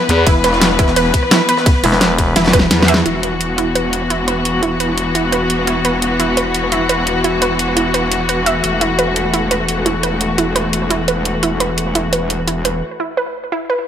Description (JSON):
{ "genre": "dark technical drum and bass", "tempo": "172 BPM", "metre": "4/4", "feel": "straight", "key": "unclear", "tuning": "A4 = 440 Hz", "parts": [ { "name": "warm studio string section", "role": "sustained chords", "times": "0.0-12.8 s", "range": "E3 to B4", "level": "-18 LUFS", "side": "left 3 dB", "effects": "sidechain pumping" }, { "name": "wide unison pluck", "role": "arpeggios", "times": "0.0-13.8 s", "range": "E4 to E5", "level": "-19 LUFS", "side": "right 3 dB", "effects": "sidechain pumping, tape echo" }, { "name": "growling FM bass", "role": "bass", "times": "0.1-2.3 s", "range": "E1 to E2", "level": "-14 LUFS", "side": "equal", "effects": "none" }, { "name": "dubstep drum kit", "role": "drums", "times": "0.1-12.7 s", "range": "hi-hat, ride cymbal, rim click, snare drum", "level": "-17 LUFS", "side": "equal", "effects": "none" }, { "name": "jungle sampler-style drum kit", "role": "drums", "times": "0.1-3.1 s", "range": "hi-hat, ride cymbal, snare drum", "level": "-23 LUFS", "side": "equal", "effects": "none" }, { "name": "metallic wobble bass", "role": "bass", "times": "0.3-12.8 s", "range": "E1 to E2", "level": "-20 LUFS", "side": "equal", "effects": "distortion, chorus, overdrive, sidechain pumping" }, { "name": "electronic kick drum", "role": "drums", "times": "0.3-2.6 s", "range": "none", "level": "-14 LUFS", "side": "equal", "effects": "none" } ], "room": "moderate lush hall reverb, RT60 1.8 s", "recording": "none", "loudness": "-13 LUFS", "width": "side -9 dB against mid", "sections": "0.0-3.1 A section; 3.1-13.9 B section", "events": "drop 0.0-3.1; drum fill 2.4-3.1; band accent 2.9; break 12.8-13.9", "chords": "0.0 E5", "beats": "| 0.27 0.61 0.96 1.31 | 1.66 2.01 2.36 2.71 | 3.06 3.40 3.75 4.10 | 4.45 4.80 5.15 5.50 | 5.85 6.20 6.54 6.89 | 7.24 7.59 7.94 8.29 | 8.64 8.99 9.34 9.68 | 10.03 10.38 10.73 11.08 | 11.43 11.78 12.13 12.47 | 12.82 13.17 13.52" }